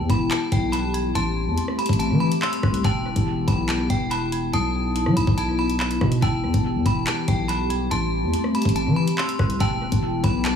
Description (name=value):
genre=hip hop, drill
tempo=142 BPM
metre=4/4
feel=half-time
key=E harmonic minor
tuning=A4 = 440 Hz
part: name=metallic FM bell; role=melody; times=0.0-10.6 s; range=G5 to C6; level=-28 LUFS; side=equal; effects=chorus, tape echo
part: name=dark detuned synth bell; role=second line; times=0.0-10.4 s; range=G5 to F#6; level=-34 LUFS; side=right 2 dB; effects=chorus, tape echo
part: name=dark analog pad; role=sustained chords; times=0.0-10.6 s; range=E3 to G4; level=-25 LUFS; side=left 2 dB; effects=chorus
part: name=long sustained 808-style bass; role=bass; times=0.0-10.6 s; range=D#1 to F#3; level=-24 LUFS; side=equal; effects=none
part: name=drill drum kit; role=drums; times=0.1-10.5 s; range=handclaps, hi-hat, kick drum, rim click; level=-25 LUFS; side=equal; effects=overdrive, tape echo
room=digital ambience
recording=echo-heavy mix, studio ambience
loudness=-20 LUFS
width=side -7 dB against mid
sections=0.0-10.6 A section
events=none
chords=0.0 Em; 1.2 Am7; 2.8 Em; 4.5 B; 6.2 Em; 7.9 Am7; 9.6 Em